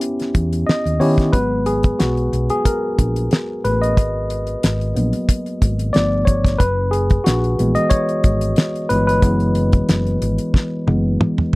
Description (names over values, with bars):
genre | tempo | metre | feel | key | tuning
lush 1970s-style soul | 91 BPM | 4/4 | swing 54% on 16ths | G# minor | A4 = 439 Hz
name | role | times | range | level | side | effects
tine electric piano | accompaniment | 0.0-11.6 s | E3 to D#5 | -19 LUFS | equal | overdrive
damped 70s drum kit | drums | 0.0-11.6 s | hi-hat, kick drum, snare drum, toms | -16 LUFS | equal | none
hollow-body short-scale fingered electric bass | bass | 0.4-11.6 s | F#1 to D#3 | -20 LUFS | equal | none
room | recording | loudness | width
little or no reverb | dry, close 1970s-style studio recording | -15 LUFS | side -22 dB against mid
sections
0.0-1.3 A section; 1.3-11.6 B section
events
tine electric piano solo 1.3-11.6; drum fill 10.5-11.6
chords
0.0 D#7b9b13; 1.3 G#m7; 5.9 G9; 6.6 F#7sus4